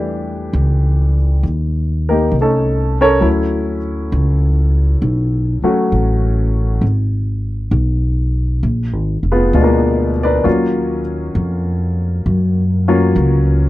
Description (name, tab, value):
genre	jazz ballad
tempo	66 BPM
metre	4/4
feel	swing 69% on 8ths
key	unclear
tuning	A4 = 440 Hz
part	warm baby grand piano	accompaniment	0.0-13.7 s	Cb3 to D5	-17 LUFS	left 1 dB	none
part	upright bass	bass	0.0-13.7 s	F1 to Gb2	-15 LUFS	equal	none
room	little or no reverb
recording	dry, close 1970s-style studio recording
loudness	-13 LUFS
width	side -16 dB against mid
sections	0.0-13.7 A section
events	none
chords	0.0 Em7; 1.4 Eb7#11; 3.2 Dmaj9; 6.8 Abm; 8.6 Bb7b9; 10.4 Ebm9